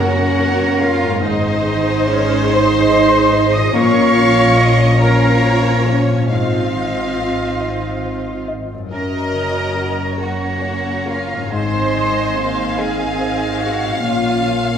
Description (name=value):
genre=cinematic, emotional film score for orchestra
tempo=47 BPM (dotted quarters)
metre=6/8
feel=uneven beats, rubato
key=Bb minor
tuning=A4 = 444 Hz
part: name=rich studio violin section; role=melody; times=0.0-14.8 s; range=Bb4 to F5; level=-24 LUFS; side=left 2 dB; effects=none
part: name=bright oboe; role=second line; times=0.0-14.8 s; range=F5 to C6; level=-26 LUFS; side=right 2 dB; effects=none
part: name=mellow hollow silver concert flute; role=second line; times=0.0-14.8 s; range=Db5 to Eb6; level=-26 LUFS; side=left 1 dB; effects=none
part: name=warm clarinet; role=second line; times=0.0-14.8 s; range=Db5 to F5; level=-27 LUFS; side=left 1 dB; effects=none
part: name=warm studio violin section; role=second line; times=0.0-14.8 s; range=Db5 to Eb6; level=-27 LUFS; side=left 1 dB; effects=none
part: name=felt-muted upright piano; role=accompaniment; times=0.0-14.8 s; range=Gb2 to Eb5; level=-23 LUFS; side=left 2 dB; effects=none
part: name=warm studio viola section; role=accompaniment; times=0.0-14.8 s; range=Ab3 to Bb4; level=-23 LUFS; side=right 2 dB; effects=none
part: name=mellow French horn section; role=sustained chords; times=0.0-14.8 s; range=Eb3 to F4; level=-23 LUFS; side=right 2 dB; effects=none
part: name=concert harp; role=arpeggios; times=0.0-14.8 s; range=Gb2 to C6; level=-27 LUFS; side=left 4 dB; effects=none
part: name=rich studio cello section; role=bass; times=0.0-14.8 s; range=Db4 to Eb5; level=-22 LUFS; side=right 2 dB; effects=none
part: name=rich studio double bass section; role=bass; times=0.0-14.8 s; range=Gb1 to Gb2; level=-21 LUFS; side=equal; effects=none
room=wet scoring stage reverb, RT60 1.4 s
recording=heard from further back in the room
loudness=-14 LUFS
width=side -8 dB against mid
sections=0.0-14.8 A section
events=none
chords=0.0 Gb; 1.2 Ab; 3.7 Bbm; 6.3 Fm7/Ab; 8.9 Gb; 11.5 Ab; 14.0 Bbm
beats=| 1.20 2.49 | 3.73 5.00 | 6.30 7.61 | 8.93 10.20 | 11.51 12.78 | 14.00